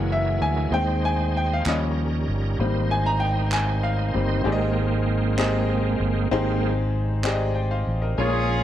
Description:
slow gospel; 64 BPM (dotted quarters); 6/8; straight; Ab major; A4 = 440 Hz
bright grand piano; accompaniment; 0.0-8.6 s; Ab2 to Bb5; -26 LUFS; left 3 dB
bright tonewheel organ; sustained chords; 0.0-8.6 s; Eb3 to C5; -28 LUFS; right 4 dB; slow rotary speaker, overdrive, chorus vibrato
fingered electric bass; bass; 0.0-8.6 s; Gb1 to Eb2; -24 LUFS; equal
group handclap; percussion; 1.7-7.5 s; -31 LUFS; right 2 dB
clear horn section; melody; 8.2-8.6 s; Db4 to Ab4; -24 LUFS; equal
moderate echo chamber reverb, RT60 1.3 s; dark, warm production; -21 LUFS; side -11 dB against mid
0.0-4.5 A section; 4.5-8.2 B section
grand piano solo 0.0-4.5; tonewheel organ solo 4.5-8.2
0.0 Gb9; 0.7 Ab/Eb; 1.7 Eb7; 2.6 Abmaj7

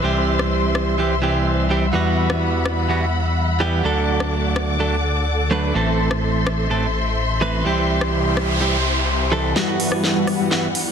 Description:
EDM, festival progressive house; 126 BPM; 4/4; straight; E minor; A4 = 441 Hz
direct-recorded clean electric guitar; accompaniment; 0.0-10.7 s; A2 to B4; -22 LUFS; right 3 dB; digital delay
dark studio string section; sustained chords; 0.0-10.9 s; E2 to D6; -24 LUFS; left 2 dB
wide detuned saw bass; bass; 0.0-9.5 s; A1 to E2; -22 LUFS; left 1 dB; chorus
big-room dance drum kit; drums; 0.4-10.8 s; hi-hat, rim click, snare drum; -26 LUFS; left 1 dB; soft clipping on snare, high-pass filter on snare, high-pass filter on hats
noise sweep and riser; sound effects; 8.0-10.9 s; -26 LUFS; right 1 dB
dense compressed supersaw; riff; 9.6-10.7 s; G3 to A5; -21 LUFS; left 1 dB; cassette tape, low-pass filter, digital delay
light reverb; dense, heavily limited modern master; -17 LUFS; side -7 dB against mid
0.0-9.6 A section; 9.6-10.9 B section
noise sweep 8.0-9.6; build-up 9.6-10.9; drum fill 9.6-10.9; filter sweep on supersaw synth 9.6-10.9
0.0 C; 1.9 Emadd9; 3.8 D; 5.8 Am; 7.7 C; 9.6 Emadd9

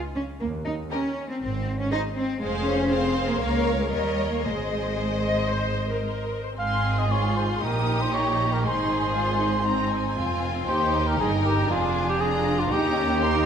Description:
quick classical-period movement for symphony orchestra; 111-123 BPM; 4/4; rubato; Ab major; A4 = 441 Hz
rich studio cello section; bass; 0.1-13.5 s; Eb2 to Eb4; -28 LUFS; right 2 dB
warm studio double bass section; bass; 0.4-13.5 s; F1 to Eb2; -29 LUFS; right 2 dB
warm studio violin section; melody; 0.9-13.5 s; Eb5 to Eb6; -34 LUFS; left 3 dB
rich studio violin section; second line; 0.9-13.5 s; Eb4 to Db5; -30 LUFS; left 3 dB
rich studio viola section; accompaniment; 0.9-13.5 s; C4 to Eb5; -30 LUFS; equal
dark cor anglais; second line; 6.6-13.5 s; F4 to F5; -26 LUFS; equal
moderate scoring stage reverb, RT60 1.9 s; minimal, uncompressed stereo recording; -22 LUFS; side -8 dB against mid
0.0-6.6 A section; 6.6-13.5 B section
0.4 Eb7(no3); 1.4 Ab; 2.4 Fm; 3.4 Bbm7/Db; 3.9 Eb7; 4.4 Ab; 7.6 Eb/Bb; 8.7 Ab; 10.7 Eb; 11.7 Bb7/F; 12.7 Eb

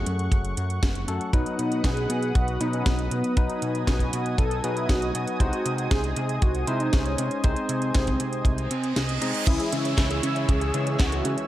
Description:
italo disco; 118 BPM; 4/4; straight; C# minor; A4 = 440 Hz
lush unison pad; sustained chords; 0.0-11.5 s; A3 to E6; -33 LUFS; right 1 dB; chorus
bell-like tine electric piano; stabs; 0.0-11.5 s; E3 to D#5; -32 LUFS; left 3 dB
fat analog bass; bass; 0.0-11.4 s; F#1 to C#3; -28 LUFS; equal
house drum kit; drums; 0.1-11.5 s; crash cymbal, handclaps, hi-hat, snare drum; -31 LUFS; right 1 dB; gated reverb
kick drum; drums; 0.3-11.1 s; -23 LUFS; equal
wide unison lead; melody; 1.3-11.4 s; B3 to A4; -30 LUFS; equal; analog chorus, cassette tape, tape echo
reverse cymbal and downlifter; sound effects; 8.7-11.5 s; -33 LUFS; right 3 dB
warbly dusty pluck; arpeggios; 9.5-11.5 s; C#4 to C#5; -34 LUFS; right 2 dB; chorus, digital delay
little or no reverb; -22 LUFS; side -14 dB against mid
0.0-9.5 A section; 9.5-11.5 B section
reverse cymbal 8.7-9.5; kick drops out 9.0-9.5
0.0 F#madd9; 1.3 B; 5.4 G#/B#; 9.5 C#m

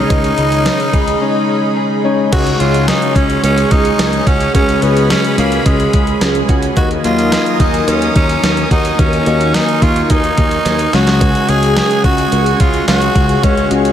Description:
1980s-style pop; 108 BPM; 4/4; straight; A4 = 439 Hz
growling tenor saxophone; melody; 0.0-13.7 s; G#3 to G#4; -17 LUFS; right 1 dB; analog delay
tine electric piano; accompaniment; 0.0-13.9 s; C#3 to D#5; -17 LUFS; left 4 dB; wide subtle chorus
phased analog pad; sustained chords; 0.0-13.9 s; G#4 to D#6; -21 LUFS; right 1 dB; phaser, chorus
direct-recorded clean electric guitar; riff; 0.0-13.9 s; D#3 to G#4; -24 LUFS; right 5 dB
sustaining fretless electric bass; bass; 0.0-13.9 s; C#2 to D#2; -18 LUFS; equal
clean 12-bit digital drum machine; drums; 0.1-13.9 s; crash cymbal, hi-hat, kick drum, snare drum, tambourine; -16 LUFS; equal
cowbell; percussion; 0.1-13.6 s; -30 LUFS; right 6 dB
moderate huge ambient reverb, RT60 8.1 s; dreamy mix soaked in reverb; -10 LUFS; side -10 dB against mid
0.0-2.3 A section; 2.3-13.9 B section
drum fill 10.7-11.2
0.0 C#sus2; 2.3 C#sus4; 6.8 D#m; 10.9 C#sus4

